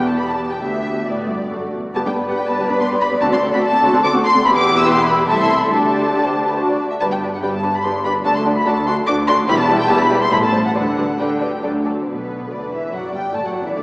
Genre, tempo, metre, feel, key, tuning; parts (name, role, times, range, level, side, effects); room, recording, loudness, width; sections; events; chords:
quick classical-period movement for string orchestra; 132-147 BPM; 3/4; rubato; G major; A4 = 440 Hz
muted studio violin section; melody; 0.0-13.8 s; B4 to E6; -19 LUFS; left 1 dB
muted symphonic violin section; second line; 0.0-13.8 s; G4 to B5; -22 LUFS; equal
muted symphonic viola section; accompaniment; 0.0-13.8 s; D3 to G4; -22 LUFS; equal
muted symphonic cello section; bass; 0.0-13.8 s; C2 to D3; -24 LUFS; equal
muted symphonic double bass section; bass; 0.0-13.8 s; E1 to D2; -27 LUFS; equal
wet concert hall reverb, RT60 2.4 s; heard from further back in the room, small speaker sound; -15 LUFS; side -24 dB against mid
0.0-2.0 A section; 2.0-12.1 B section; 12.1-13.8 C section
0.0 Em; 0.6 G/D; 1.5 D; 2.0 G; 3.2 D7(no3); 4.4 Em; 5.3 Am/C; 5.7 Dsus4; 6.6 D; 7.0 G; 8.2 D; 9.5 Em; 10.3 A7(no3); 10.7 G/D; 11.6 D; 12.1 G/B